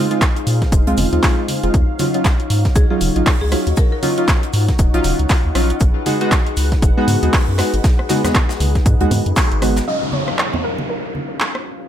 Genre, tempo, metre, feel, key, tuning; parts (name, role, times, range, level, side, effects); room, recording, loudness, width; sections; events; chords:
deep house; 118 BPM; 4/4; swing 59% on 16ths; Eb minor; A4 = 440 Hz
warm analog pad; sustained chords; 0.0-11.9 s; Gb3 to Gb5; -27 LUFS; left 3 dB; chorus, sidechain pumping
warm analog keys; stabs; 0.0-11.9 s; Gb3 to F5; -20 LUFS; equal; chorus, sidechain pumping, low-pass filter, ping-pong delay
deep house drum kit; drums; 0.1-11.6 s; handclaps, hi-hat, rim click; -22 LUFS; right 1 dB; overdrive
crisp fusion drum kit; drums; 0.2-9.9 s; hi-hat, shaker, snare drum; -31 LUFS; left 1 dB; sidechain pumping on hats, high-pass filter on hats, high-pass filter on snare, sidechain pumping on perc, high-pass filter on perc, high-pass filter on room
electronic kick drum; drums; 0.2-9.5 s; -15 LUFS; equal
round analog bass; bass; 0.5-9.8 s; Eb1 to Bb2; -18 LUFS; equal; tube saturation, sidechain pumping
congas; percussion; 1.0-11.3 s; -25 LUFS; right 2 dB
buzzing marimba with hard mallets; melody; 2.8-4.0 s; Ab4 to Bb4; -27 LUFS; left 1 dB; ping-pong delay
soft round pluck; melody; 9.9-11.6 s; Bb4 to Eb5; -25 LUFS; equal; ensemble chorus, ping-pong delay
downlifter; sound effects; 9.9-11.9 s; -25 LUFS; equal
light reverb; -14 LUFS; side -10 dB against mid
0.0-9.9 A section; 9.9-11.9 B section
band accent 9.4
0.0 Fm7; 1.7 Ebm9; 5.8 Abm7; 9.9 Ebm9